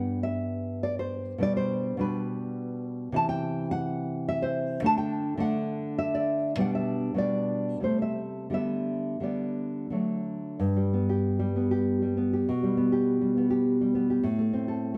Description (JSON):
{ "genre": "romantic piece for solo classical guitar", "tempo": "83-107 BPM", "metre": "3/4", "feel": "rubato", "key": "G major", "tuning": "A4 = 439 Hz", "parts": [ { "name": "nylon-string guitar", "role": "solo", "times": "0.0-15.0 s", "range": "G2 to A5", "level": "-28 LUFS", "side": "equal", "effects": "none" } ], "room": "wet recital hall reverb, RT60 1.7 s", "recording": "dark, warm production", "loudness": "-28 LUFS", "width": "mono", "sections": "0.0-10.6 A section; 10.6-15.0 B section", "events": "none", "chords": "0.0 G; 1.4 G/B; 3.2 C; 4.9 D; 6.6 G/B; 7.8 Am7/C; 8.5 G/D; 9.9 D; 10.6 G; 12.5 G/B; 14.2 Am" }